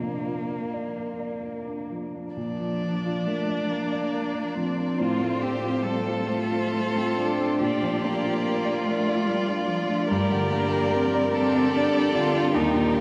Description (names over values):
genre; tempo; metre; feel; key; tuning
classical, slow romantic movement for piano quintet; 42-51 BPM (dotted quarters); 6/8; rubato; Bb major; A4 = 440 Hz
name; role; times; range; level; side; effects
warm cello; second line; 0.0-13.0 s; F3 to F4; -30 LUFS; equal; none
warm grand piano; accompaniment; 0.0-13.0 s; Eb2 to D5; -31 LUFS; equal; none
warm violin; melody; 2.3-13.0 s; D4 to Bb4; -34 LUFS; equal; none
warm violin; second line; 2.4-13.0 s; Bb4 to D5; -35 LUFS; equal; none
clear viola; accompaniment; 2.4-13.0 s; D4 to A4; -34 LUFS; equal; none
room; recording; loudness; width
wet cathedral reverb, RT60 6.3 s; nothing above 10.4 kHz; -25 LUFS; mono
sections
0.0-2.4 A section; 2.4-13.0 A section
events
none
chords
0.0 Bb; 5.0 F/A; 7.6 Bb; 10.1 Gm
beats
0.96 | 2.36 3.70 | 4.98 6.27 | 7.62 8.86 | 10.10 11.34 | 12.54